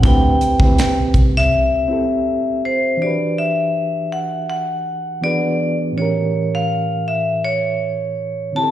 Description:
R&B, neo-soul; 81 BPM; 4/4; swing 55% on 16ths; E minor; A4 = 440 Hz
vibraphone with hard mallets; melody; 0.0-8.7 s; C5 to A5; -19 LUFS; left 2 dB; slapback echo
reed electric piano; accompaniment; 0.0-8.7 s; A2 to B4; -21 LUFS; right 2 dB; fast tremolo, slapback echo
vintage muted fingered electric bass; bass; 0.0-1.5 s; C2 to D2; -15 LUFS; equal
tight funk drum kit; drums; 0.0-1.5 s; hi-hat, kick drum, snare drum; -16 LUFS; equal
congas; percussion; 0.0-1.3 s; -27 LUFS; left 1 dB
light reverb; live gig heard through the venue's PA, recital hall reverb; -16 LUFS; side -12 dB against mid
0.0-3.0 A section; 3.0-8.7 B section
break 1.5-3.0
0.0 D13sus4; 3.0 Em9; 5.2 E9; 6.0 A7b9

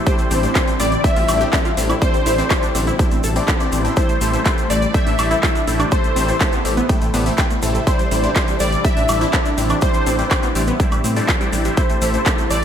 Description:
progressive house; 123 BPM; 4/4; straight; A minor; A4 = 439 Hz
lush unison pad; sustained chords; 0.0-12.6 s; B2 to E4; -26 LUFS; equal; chorus, phaser, sidechain pumping
supersaw stab; stabs; 0.0-12.6 s; A3 to G5; -24 LUFS; left 3 dB; phaser, sidechain pumping, ping-pong delay
plucky unison lead; melody; 0.1-12.6 s; C5 to E5; -23 LUFS; left 1 dB; ensemble chorus, sidechain pumping, ping-pong delay
analog pluck; arpeggios; 0.1-12.6 s; G3 to A4; -25 LUFS; equal; chorus, sidechain pumping, ping-pong delay
deep house drum kit; drums; 0.1-12.6 s; handclaps, hi-hat, woodblock; -24 LUFS; right 1 dB; overdrive, sidechain pumping on hats, sidechain pumping on cymbals, sidechain pumping on perc
electronic kick drum; drums; 0.1-12.4 s; -18 LUFS; equal; overdrive
tube shaker; percussion; 0.1-12.6 s; -33 LUFS; left 1 dB
dark detuned saw bass; bass; 0.3-12.6 s; A1 to A2; -21 LUFS; equal; tube saturation, sidechain pumping
moderate lush hall reverb, RT60 1.9 s; dreamy mix soaked in reverb; -15 LUFS; side -9 dB against mid
0.0-12.6 A section
0.1 Cadd9/A; 4.0 Am7

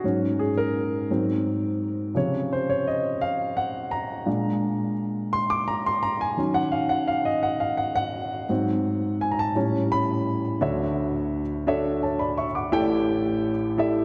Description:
gospel; 57 BPM (dotted quarters); 6/8; straight; Db major, D major from 10.6 s; A4 = 441 Hz
warm baby grand piano; solo; 0.0-14.0 s; A1 to D6; -25 LUFS; equal
wet concert hall reverb, RT60 2.5 s; dark, warm production; -25 LUFS; mono
0.0-10.6 A section; 10.6-14.0 B section
grand piano solo 0.0-10.6
0.0 Ab7sus4; 1.1 Ab7; 2.1 Dbmaj7; 4.3 Bb7; 6.4 Ebm7; 8.5 Ab7; 9.6 A9; 10.6 Dmaj9; 12.7 A7sus4

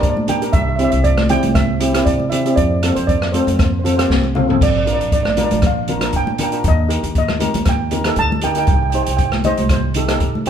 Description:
calypso; 118 BPM; 4/4; swing 53% on 16ths; A4 = 445 Hz
steel pan; melody; 0.0-10.5 s; C5 to A5; -21 LUFS; right 3 dB
steel pan; accompaniment; 0.0-10.5 s; C4 to C5; -20 LUFS; left 1 dB
upright bass; bass; 0.0-10.5 s; Bb1 to C3; -21 LUFS; equal
open jazz drum kit; drums; 0.0-10.5 s; crash cymbal, hi-hat, kick drum, rim click, snare drum, toms; -19 LUFS; equal
congas; percussion; 0.2-10.5 s; -23 LUFS; equal
moderate large studio reverb, RT60 1.2 s; band playing live in one room; -14 LUFS; side -8 dB against mid
0.0-10.5 A section
drum fill 4.1-4.6
0.0 Gm/Bb; 0.5 C; 2.6 F; 4.6 Bb; 6.6 Eb; 8.7 Cm

